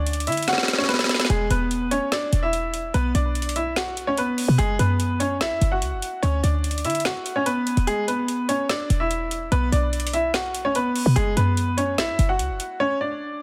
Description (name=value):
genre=hip hop, trap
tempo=146 BPM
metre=4/4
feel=half-time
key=unclear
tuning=A4 = 440 Hz
part: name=clear baby grand piano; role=melody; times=0.0-13.4 s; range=G#3 to F#5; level=-26 LUFS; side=equal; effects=delay
part: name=short 808-style bass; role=bass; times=0.0-12.6 s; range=E1 to D3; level=-25 LUFS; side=equal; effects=none
part: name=trap drum kit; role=drums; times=0.1-12.7 s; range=hi-hat, snare drum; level=-29 LUFS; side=equal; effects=none
room=light reverb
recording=dense, heavily limited modern master, vinyl crackle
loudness=-23 LUFS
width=mono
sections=0.0-13.4 A section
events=drum fill 0.5-1.3; kick muted 7.9-8.7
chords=0.0 D; 1.3 E5; 2.9 Bm; 4.6 N.C.; 6.2 D; 7.9 E5; 9.5 Bm; 11.2 N.C.